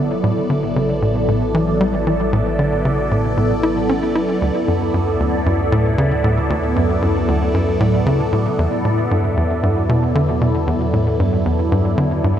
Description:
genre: ambient, sequencer-driven space music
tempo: 115 BPM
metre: 4/4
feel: straight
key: unclear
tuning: A4 = 440 Hz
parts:
  - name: phased analog pad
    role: sustained chords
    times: 0.0-12.4 s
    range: F#3 to D5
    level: -19 LUFS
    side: equal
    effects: phaser, chorus
  - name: tight sequencer bass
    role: riff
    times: 0.0-12.4 s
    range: D2 to E4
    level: -18 LUFS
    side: equal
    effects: tape echo
  - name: warm sub bass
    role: bass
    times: 0.0-12.4 s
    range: G1 to E2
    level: -26 LUFS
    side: equal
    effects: none
room: wet cathedral reverb, RT60 5.8 s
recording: in a vast, echoing space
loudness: -15 LUFS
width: side -10 dB against mid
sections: 0.0-12.4 A section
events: none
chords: 0.2 Asus4; 4.4 D; 8.6 Em7

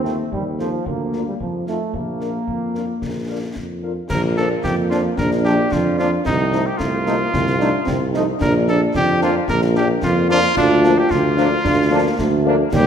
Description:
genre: military-style march for wind band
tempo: 111 BPM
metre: 2/4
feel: straight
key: Bb major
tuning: A4 = 439 Hz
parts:
  - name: warm cornet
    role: melody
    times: 0.0-12.9 s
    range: D4 to F5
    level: -22 LUFS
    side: equal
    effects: none
  - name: mellow French horn section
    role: accompaniment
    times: 0.0-12.6 s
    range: F3 to Bb4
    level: -26 LUFS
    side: left 6 dB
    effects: none
  - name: warm trombone section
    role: sustained chords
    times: 0.0-12.6 s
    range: F3 to Eb4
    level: -26 LUFS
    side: right 1 dB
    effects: none
  - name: warm tuba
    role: bass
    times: 0.0-12.9 s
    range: Bb1 to F2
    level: -20 LUFS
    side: right 1 dB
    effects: none
  - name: concert snare drum, concert bass drum and clash cymbals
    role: drums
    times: 0.1-12.9 s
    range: none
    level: -27 LUFS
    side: left 2 dB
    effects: none
  - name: mellow euphonium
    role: second line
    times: 4.1-12.9 s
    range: G3 to F4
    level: -22 LUFS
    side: right 3 dB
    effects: none
room: moderate scoring stage reverb, RT60 1.5 s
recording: none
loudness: -16 LUFS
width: side -8 dB against mid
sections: 0.0-4.1 A section; 4.1-12.9 A section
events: none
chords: 0.0 F7/Eb; 0.9 Bb/D; 1.4 F7; 1.9 Bb; 6.3 F7/C; 8.4 Bb; 10.6 Bb/D

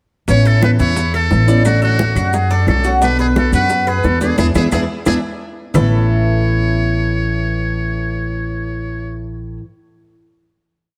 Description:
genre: latin, Cuban son and guajira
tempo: 176 BPM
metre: 4/4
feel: straight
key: A major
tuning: A4 = 445 Hz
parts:
  - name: trumpet with metal mute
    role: melody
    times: 0.3-9.3 s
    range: F#4 to C#5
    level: -24 LUFS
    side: equal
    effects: none
  - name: nylon-string guitar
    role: accompaniment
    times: 0.3-9.6 s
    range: A2 to F#4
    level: -22 LUFS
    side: equal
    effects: none
  - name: Cuban tres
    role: arpeggios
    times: 0.3-9.6 s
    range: A3 to D5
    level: -24 LUFS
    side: equal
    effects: none
  - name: upright bass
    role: bass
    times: 0.3-9.6 s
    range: A1 to F#2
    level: -19 LUFS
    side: equal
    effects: none
  - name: bongos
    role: percussion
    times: 0.3-5.8 s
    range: none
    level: -28 LUFS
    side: equal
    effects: none
  - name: congas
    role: percussion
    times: 0.3-5.8 s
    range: none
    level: -24 LUFS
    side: equal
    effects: none
  - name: maracas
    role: percussion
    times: 0.3-5.8 s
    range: none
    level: -37 LUFS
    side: equal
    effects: none
  - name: claves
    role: percussion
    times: 0.6-5.8 s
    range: none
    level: -37 LUFS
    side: equal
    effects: none
room: light reverb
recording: heard from further back in the room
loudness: -15 LUFS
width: mono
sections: 0.3-5.7 verse; 5.7-8.5 final chord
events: band accent 4.4-5.7; drum fill 4.9-5.7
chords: 0.3 Aadd9; 1.7 Dmaj7/A; 3.0 Bm; 4.4 E7; 5.7 Aadd9

